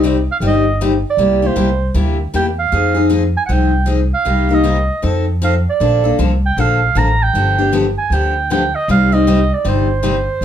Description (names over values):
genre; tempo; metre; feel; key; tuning
acoustic string swing (jazz manouche); 156 BPM; 4/4; swing 62% on 8ths; C minor; A4 = 440 Hz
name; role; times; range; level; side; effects
picked steel-string acoustic guitar; accompaniment; 0.0-10.4 s; C3 to D5; -17 LUFS; left 4 dB; none
upright bass; bass; 0.0-10.4 s; G1 to F2; -16 LUFS; equal; none
warm clarinet; melody; 0.3-10.4 s; C5 to Bb5; -18 LUFS; right 5 dB; plate reverb
room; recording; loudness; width
light reverb; dark, warm production; -12 LUFS; side -9 dB against mid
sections
0.0-10.4 A section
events
none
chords
0.0 Cmadd9; 1.2 C7; 2.7 Fm7; 4.3 Cm7; 5.0 F7; 5.8 Bbmaj7; 7.3 G7; 8.9 Cmadd9